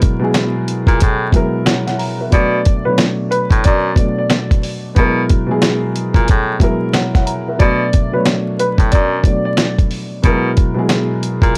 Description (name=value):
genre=hip hop, boom-bap hip-hop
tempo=91 BPM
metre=4/4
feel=swing 63% on 16ths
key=B dorian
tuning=A4 = 441 Hz
part: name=dark baby grand piano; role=accompaniment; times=0.0-11.6 s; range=B2 to A#5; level=-20 LUFS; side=equal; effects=high-pass filter, low-pass filter
part: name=dusty soul sampler-style drum kit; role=drums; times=0.0-11.6 s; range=hi-hat, kick drum, snare drum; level=-16 LUFS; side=equal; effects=none
part: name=clear baritone saxophone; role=bass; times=0.9-11.5 s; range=F#2 to B2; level=-20 LUFS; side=equal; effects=none
part: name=warm upright piano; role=melody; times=2.3-9.8 s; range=B4 to D5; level=-23 LUFS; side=equal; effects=high-pass filter, low-pass filter, analog delay
room=small room ambience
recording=dry, gritty hardware recording, vinyl crackle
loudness=-15 LUFS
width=mono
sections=0.0-11.6 A section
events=none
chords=0.0 F#7; 2.3 Bm7; 5.0 F#7; 7.6 Bm7; 10.2 F#7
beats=0.35 1.01 1.67 | 2.33 2.99 3.65 4.30 | 4.96 5.62 6.28 6.94 | 7.60 8.26 8.92 9.58 | 10.24 10.90 11.56